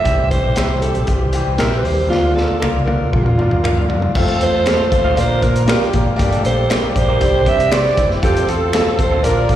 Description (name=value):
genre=uptempo 1960s-style soul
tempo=118 BPM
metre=4/4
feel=straight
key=F major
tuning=A4 = 441 Hz
part: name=breathy alto saxophone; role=melody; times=0.0-9.6 s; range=F4 to E5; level=-19 LUFS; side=right 3 dB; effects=plate reverb, slapback echo
part: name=clear grand piano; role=accompaniment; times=0.0-9.6 s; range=D3 to Bb4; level=-21 LUFS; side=left 3 dB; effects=plate reverb, slapback echo
part: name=tonewheel organ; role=sustained chords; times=0.0-9.6 s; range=D3 to A4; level=-26 LUFS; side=right 1 dB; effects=slow rotary speaker, chorus vibrato, plate reverb
part: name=vintage muted fingered electric bass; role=bass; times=0.1-9.6 s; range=Gb1 to C3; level=-20 LUFS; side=equal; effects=none
part: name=crunchy breakbeat drum kit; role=drums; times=0.1-9.6 s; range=crash cymbal, hi-hat, kick drum, snare drum, toms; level=-20 LUFS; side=equal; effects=none
part: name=electric guitar through a small old amp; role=stabs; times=0.6-9.2 s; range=C4 to F5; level=-26 LUFS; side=right 5 dB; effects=wide subtle chorus, plate reverb, slapback echo
part: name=finger snaps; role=percussion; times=0.6-8.9 s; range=none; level=-28 LUFS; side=left 3 dB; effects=slapback echo
part: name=mellow horn section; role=second line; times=4.2-9.6 s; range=G3 to D5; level=-26 LUFS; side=right 3 dB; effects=tube saturation, plate reverb, slapback echo
room=light reverb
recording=live gig heard through the venue's PA, recital hall reverb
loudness=-13 LUFS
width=side -11 dB against mid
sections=0.0-4.2 A section; 4.2-9.6 B section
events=drum fill 2.1-4.2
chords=0.1 C; 2.1 Bb; 4.2 F; 5.2 Bb; 6.2 Gm; 7.2 Csus2; 8.2 F